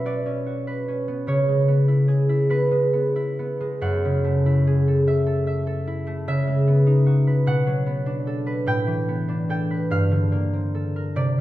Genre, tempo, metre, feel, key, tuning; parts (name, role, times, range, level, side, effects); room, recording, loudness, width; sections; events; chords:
classical, solo harp piece; 49 BPM (dotted quarters); 6/8; rubato; B dorian; A4 = 440 Hz
concert harp; solo; 0.0-11.4 s; F#2 to G5; -19 LUFS; equal
wet recital hall reverb, RT60 1.8 s; -19 LUFS; side -15 dB against mid
0.0-11.4 A section
0.0 Bmadd9; 1.3 C#m7; 3.8 F#m9; 6.3 C#m11; 7.5 Bm11; 8.7 A9sus4; 9.9 Gm11